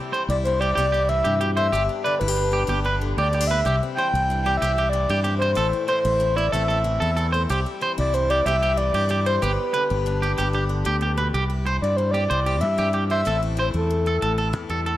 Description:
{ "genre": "highlife", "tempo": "125 BPM (dotted quarters)", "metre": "12/8", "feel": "straight", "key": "C major", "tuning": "A4 = 440 Hz", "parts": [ { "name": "picked steel-string acoustic guitar", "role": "accompaniment", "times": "0.0-15.0 s", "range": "E2 to G4", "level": "-30 LUFS", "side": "left 6 dB", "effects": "none" }, { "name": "electric guitar at the edge of break-up", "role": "arpeggios", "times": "0.1-15.0 s", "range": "E4 to C5", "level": "-26 LUFS", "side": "right 3 dB", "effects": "none" }, { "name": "breathy flute-like synth lead", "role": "melody", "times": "0.3-14.4 s", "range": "A4 to G5", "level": "-24 LUFS", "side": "equal", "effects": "chorus, analog delay" }, { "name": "fingered electric bass", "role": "bass", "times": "0.3-15.0 s", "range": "G1 to G2", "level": "-24 LUFS", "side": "equal", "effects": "none" } ], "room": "light reverb, digital ambience", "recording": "none", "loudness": "-20 LUFS", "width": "side -14 dB against mid", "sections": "0.0-11.3 A section; 11.3-15.0 B section", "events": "none", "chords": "0.0 C; 1.7 G; 3.6 C; 5.6 Am; 7.5 C; 9.4 G; 11.3 C; 13.3 Am" }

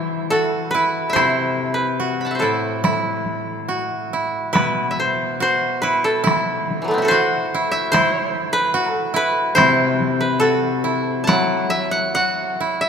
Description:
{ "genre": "japanese traditional, Japanese chamber music", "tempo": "71 BPM", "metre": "2/4", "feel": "uneven beats, rubato", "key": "unclear", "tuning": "A4 = 439 Hz", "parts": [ { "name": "koto", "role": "melody", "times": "0.0-12.9 s", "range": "E3 to B5", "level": "-20 LUFS", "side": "equal", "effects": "none" }, { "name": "koto", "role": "second line", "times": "0.0-12.9 s", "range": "E4 to F#4", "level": "-22 LUFS", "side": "right 2 dB", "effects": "none" }, { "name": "koto", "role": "accompaniment", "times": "0.0-12.9 s", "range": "A2 to F#3", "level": "-25 LUFS", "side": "left 5 dB", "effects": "none" }, { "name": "taiko ensemble", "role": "percussion", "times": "1.2-11.5 s", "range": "none", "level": "-26 LUFS", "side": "equal", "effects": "none" } ], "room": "wet cathedral reverb, RT60 5.5 s", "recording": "minimal, uncompressed stereo recording", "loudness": "-17 LUFS", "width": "side -7 dB against mid", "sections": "0.0-4.5 A section; 4.5-12.9 B section", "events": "none", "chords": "none" }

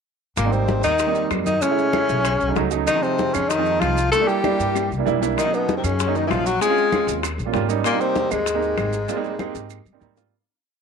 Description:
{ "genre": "Afro-Cuban jazz", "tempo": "193 BPM", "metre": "4/4", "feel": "straight", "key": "Ab major", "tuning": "A4 = 440 Hz", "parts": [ { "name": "breathy tenor saxophone", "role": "melody", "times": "0.4-10.0 s", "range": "Ab3 to A4", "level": "-22 LUFS", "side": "left 1 dB", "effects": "none" }, { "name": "warm baritone saxophone", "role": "second line", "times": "0.4-10.0 s", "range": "Ab2 to A3", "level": "-26 LUFS", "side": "left 12 dB", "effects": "none" }, { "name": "warm grand piano", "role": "accompaniment", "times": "0.4-10.3 s", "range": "F3 to G5", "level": "-24 LUFS", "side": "right 12 dB", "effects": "none" }, { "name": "upright bass", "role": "bass", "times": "0.4-10.3 s", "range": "Ab1 to Ab2", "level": "-26 LUFS", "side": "left 1 dB", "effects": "none" }, { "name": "bongos", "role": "percussion", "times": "0.4-10.2 s", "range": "none", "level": "-31 LUFS", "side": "left 16 dB", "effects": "none" }, { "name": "claves", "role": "percussion", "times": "0.4-9.9 s", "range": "none", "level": "-36 LUFS", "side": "right 12 dB", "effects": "none" }, { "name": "congas", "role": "percussion", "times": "0.4-10.3 s", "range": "none", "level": "-31 LUFS", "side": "left 3 dB", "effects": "none" }, { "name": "maracas", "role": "percussion", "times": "0.4-10.3 s", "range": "none", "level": "-35 LUFS", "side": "right 16 dB", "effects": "none" } ], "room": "moderate spring reverb, RT60 1.1 s", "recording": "1960s-style stereo with parts hard left and right", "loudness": "-18 LUFS", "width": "side -6 dB against mid", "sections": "0.4-10.3 A section", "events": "drum fill 4.8-5.4, 9.5-10.3; grand piano fill 7.4-7.8; fade-out 8.3-10.3", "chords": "0.4 Abmaj7; 1.6 B13sus4; 2.2 B9; 2.9 Dbmaj9/C; 4.1 C9 (rootless); 5.4 Bmaj9#11; 6.6 Eb13sus4; 7.2 Eb7; 7.8 Abmaj7" }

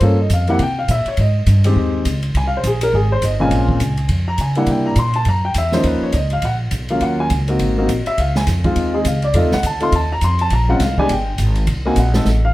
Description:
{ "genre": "jazz, small-group swing and bop", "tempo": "206 BPM", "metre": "4/4", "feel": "swing 60% on 8ths", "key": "F minor, Bb minor from 3.5 s", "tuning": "A4 = 440 Hz", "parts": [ { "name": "dark baby grand piano", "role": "accompaniment", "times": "0.0-12.5 s", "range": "Bb2 to C6", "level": "-18 LUFS", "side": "left 1 dB", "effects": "none" }, { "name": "upright bass", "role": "bass", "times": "0.0-12.5 s", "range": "G1 to Db3", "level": "-17 LUFS", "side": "equal", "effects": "none" }, { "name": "open jazz drum kit", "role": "drums", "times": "0.0-12.3 s", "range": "hi-hat, kick drum, ride cymbal, snare drum", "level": "-25 LUFS", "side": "right 1 dB", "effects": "none" } ], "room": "moderate studio reverb, RT60 0.7 s", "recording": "heard from further back in the room", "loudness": "-14 LUFS", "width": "side -17 dB against mid", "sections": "0.0-3.5 A section; 3.5-12.5 A section", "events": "drum fill 12.3", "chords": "0.0 Gm7b5; 0.6 Bbm69; 1.2 Fm9 (rootless); 3.5 Bbm9; 4.7 C9; 5.8 Bmaj9#11; 7.0 Ebm7; 7.6 Ab9; 8.2 Dbmaj7; 9.3 F7; 10.5 Bbm9; 11.1 N.C.; 11.7 Cm7b5" }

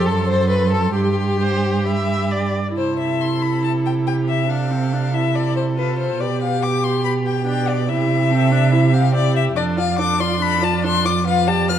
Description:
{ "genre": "quick classical-period movement for string quartet", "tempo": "141 BPM", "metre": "4/4", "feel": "rubato", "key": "C major", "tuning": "A4 = 444 Hz", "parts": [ { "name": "rich violin", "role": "melody", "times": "0.0-11.8 s", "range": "B4 to F6", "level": "-23 LUFS", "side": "left 8 dB", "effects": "none" }, { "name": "rich violin", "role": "second line", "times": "0.0-11.8 s", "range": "E4 to D5", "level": "-27 LUFS", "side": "left 3 dB", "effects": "none" }, { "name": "clear viola", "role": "accompaniment", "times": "0.0-11.8 s", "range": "C4 to E5", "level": "-23 LUFS", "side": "right 1 dB", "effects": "none" }, { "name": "rich cello", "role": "bass", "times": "0.0-11.8 s", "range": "F2 to C3", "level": "-19 LUFS", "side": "right 4 dB", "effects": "none" } ], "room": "wet recital hall reverb, RT60 1.4 s", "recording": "dark, warm production", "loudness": "-16 LUFS", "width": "side -10 dB against mid", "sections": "0.0-2.8 A section; 2.8-11.8 B section", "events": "none", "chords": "0.1 F#dim; 0.9 Gsus4; 1.9 G; 2.8 C; 4.5 Dm7/C; 6.2 G/B; 7.9 C; 9.6 Dm/F; 11.3 G7/F" }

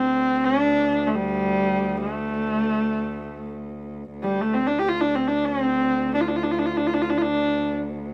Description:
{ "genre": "mongolian traditional, Mongolian folk", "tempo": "free time", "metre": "none", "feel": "none", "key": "D yu mode", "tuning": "A4 = 438 Hz", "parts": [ { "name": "clear horsehead fiddle", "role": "melody", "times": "0.0-7.7 s", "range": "G3 to G4", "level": "-24 LUFS", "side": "equal", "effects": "none" }, { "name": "rich cello", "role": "drone", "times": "0.0-8.1 s", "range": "D2", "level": "-32 LUFS", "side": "equal", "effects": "none" } ], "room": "light reverb", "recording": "recorded outdoors, with no room sound", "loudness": "-23 LUFS", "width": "mono", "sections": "0.0-8.1 A section", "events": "none", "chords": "none" }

